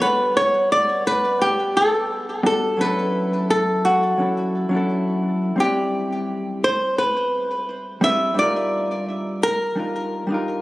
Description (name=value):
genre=chillout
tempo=86 BPM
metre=4/4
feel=straight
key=C lydian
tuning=A4 = 440 Hz
part: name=flamenco guitar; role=melody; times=0.0-10.6 s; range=F#4 to E5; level=-20 LUFS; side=equal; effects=digital delay
part: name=hollow-body jazz guitar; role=accompaniment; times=0.0-10.6 s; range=F#3 to F#5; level=-24 LUFS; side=equal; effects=auto-pan, digital delay
room=moderate lush hall reverb, RT60 2.9 s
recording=recorded on a phone in the room, club reverb, compression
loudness=-18 LUFS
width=side -18 dB against mid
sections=0.0-10.6 A section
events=fade-out 9.3-10.6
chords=0.0 Gmaj9; 2.8 Dmaj9; 5.6 Cmaj9; 8.4 Ebmaj9